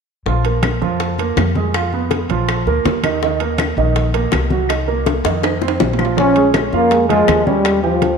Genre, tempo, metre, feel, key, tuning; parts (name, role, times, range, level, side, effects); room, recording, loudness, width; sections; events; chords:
Afro-Cuban jazz; 162 BPM; 4/4; straight; Bb minor; A4 = 442 Hz
warm upright piano; accompaniment; 0.3-8.1 s; Eb3 to G5; -19 LUFS; right 8 dB
upright bass; bass; 0.3-8.1 s; Bb1 to F2; -21 LUFS; left 2 dB
bongos; percussion; 0.3-8.2 s; -24 LUFS; left 12 dB
congas; percussion; 0.3-8.2 s; -25 LUFS; left 2 dB
timbales; percussion; 0.4-8.2 s; -26 LUFS; right 9 dB
claves; percussion; 0.6-7.8 s; -29 LUFS; left 12 dB
breathy trombone; melody; 6.2-8.2 s; F3 to Db4; -14 LUFS; left 4 dB
growling trombone; second line; 6.2-8.2 s; F3 to Db4; -19 LUFS; right 8 dB
wet echo chamber reverb, RT60 2.2 s; 1960s-style stereo with parts hard left and right; -14 LUFS; side -6 dB against mid
0.3-6.2 A section; 6.2-8.2 B section
drum fill 5.1-6.2
0.3 Bb5; 2.5 Bb; 3.2 Ebm; 4.7 Cm7; 5.4 F5; 6.2 Bbm7; 7.6 Eb7